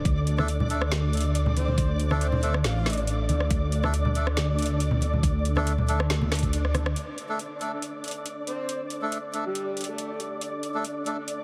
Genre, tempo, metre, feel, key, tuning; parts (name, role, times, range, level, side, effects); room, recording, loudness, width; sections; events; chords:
deep dubstep; 139 BPM; 4/4; swing 54% on 16ths, half-time; A4 = 440 Hz
dark analog pad; sustained chords; 0.0-11.4 s; D4 to D5; -39 LUFS; equal; chorus
dark detuned saw bass; bass; 0.0-6.9 s; A1 to D2; -27 LUFS; equal
flickering grainy texture; texture; 0.0-11.4 s; D5; -38 LUFS; equal; built-in reverb
electronic kick drum; drums; 0.1-6.5 s; -28 LUFS; equal; overdrive
garage drum kit; drums; 0.1-11.4 s; hi-hat, rim click, snare drum; -35 LUFS; equal; overdrive
melodica; stabs; 0.4-11.2 s; A3 to A4; -37 LUFS; equal; dub echo
congas; percussion; 0.4-6.8 s; -33 LUFS; equal
breathy flute-like synth lead; melody; 1.6-3.0, 8.5-10.2 s; G4 to F5; -38 LUFS; equal; lush chorus, dub echo
light reverb; heavily compressed radio sound, vinyl crackle; -27 LUFS; mono
0.0-7.0 A section; 7.0-11.4 B section
drum fill 6.6-7.0; band accent 6.9
0.0 D5